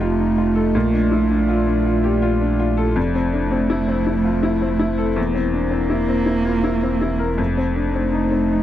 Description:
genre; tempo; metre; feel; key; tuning
neoclassical piano and strings; 81 BPM; 3/4; rubato; unclear; A4 = 439 Hz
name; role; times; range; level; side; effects
dark cello; second line; 0.0-8.6 s; A3 to Bb3; -22 LUFS; right 4 dB; none
clear upright piano; accompaniment; 0.0-8.6 s; E2 to Bb4; -21 LUFS; left 4 dB; none
warbly tape-like pad; sustained chords; 0.0-8.6 s; A3 to Eb5; -26 LUFS; left 2 dB; chorus, built-in reverb
sub bass with octave; bass; 0.0-8.6 s; E1 to Bb1; -24 LUFS; equal; none
room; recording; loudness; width
little or no reverb; dry, close 1970s-style studio recording; -17 LUFS; side -12 dB against mid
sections
0.0-8.6 A section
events
none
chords
0.0 F7; 0.7 Bbmaj7; 3.0 Fmaj7; 5.2 C7/E; 7.4 F7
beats
0.01 | 0.75 1.49 2.23 | 2.96 3.70 4.44 | 5.17 5.91 6.65 | 7.39 8.13

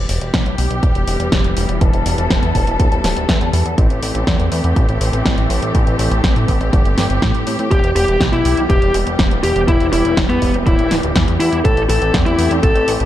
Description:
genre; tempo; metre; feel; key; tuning
italo disco; 122 BPM; 4/4; straight; A minor; A4 = 440 Hz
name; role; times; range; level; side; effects
rich studio string section; sustained chords; 0.0-13.1 s; E3 to A4; -21 LUFS; left 1 dB; none
chorused synth bass; bass; 0.0-13.1 s; D1 to A2; -19 LUFS; equal; none
house drum kit; drums; 0.1-13.1 s; hi-hat, snare drum; -22 LUFS; equal; none
electronic kick drum; drums; 0.3-12.7 s; none; -16 LUFS; equal; none
bluesy overdriven lead guitar; melody; 7.7-12.9 s; B3 to A4; -16 LUFS; left 1 dB; distortion, digital delay
room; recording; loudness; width
light reverb; dark, warm production; -13 LUFS; side -12 dB against mid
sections
0.0-13.1 A section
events
none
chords
0.0 Em; 3.8 Am7; 7.7 Em; 11.6 Am7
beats
0.34 0.83 1.32 | 1.81 2.30 2.80 3.29 | 3.78 4.27 4.76 5.25 | 5.75 6.24 6.73 7.22 | 7.71 8.21 8.70 9.19 | 9.68 10.17 10.66 11.16 | 11.65 12.14 12.63

